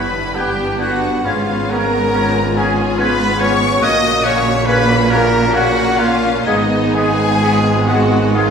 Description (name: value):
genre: classical, slow romantic movement for symphony orchestra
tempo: 60-72 BPM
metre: 3/4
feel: rubato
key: F# major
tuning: A4 = 443 Hz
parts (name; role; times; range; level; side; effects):
- dark symphonic violin section; melody; 0.0-8.5 s; D#5 to D#6; -22 LUFS; left 4 dB; none
- bright clarinet; second line; 0.0-8.5 s; B3 to E4; -29 LUFS; left 2 dB; none
- flute section; second line; 0.0-8.5 s; F#6 to G#6; -27 LUFS; left 4 dB; none
- rich chamber violin section; second line; 0.0-8.5 s; D#4 to D#5; -23 LUFS; left 2 dB; none
- warm oboe; second line; 0.0-8.5 s; B4 to D#5; -26 LUFS; right 2 dB; none
- warm bassoon; accompaniment; 0.0-8.5 s; G#3 to B3; -26 LUFS; equal; none
- warm chamber viola section; accompaniment; 0.0-8.5 s; G3 to F#4; -21 LUFS; right 1 dB; none
- mellow French horn section; sustained chords; 0.0-8.5 s; B3 to G#4; -25 LUFS; left 2 dB; none
- warm trombone section; sustained chords; 0.0-8.5 s; C#3 to B3; -24 LUFS; right 2 dB; none
- clear trumpet; stabs; 0.0-8.5 s; D#4 to D#5; -20 LUFS; equal; none
- rich chamber double bass section; bass; 0.0-8.5 s; G1 to A#1; -22 LUFS; right 3 dB; none
- warm chamber cello section; bass; 0.0-8.5 s; G2 to A#2; -22 LUFS; equal; none
room: wet recital hall reverb, RT60 1.4 s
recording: recorded in a church or concert hall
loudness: -12 LUFS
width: side -6 dB against mid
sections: 0.0-8.5 A section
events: none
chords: 0.0 Em/G; 1.2 C#7/G#; 3.8 F#/A#; 6.5 G#m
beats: 0.36 | 1.25 2.15 2.99 | 3.83 4.68 5.54 | 6.47 7.43 8.35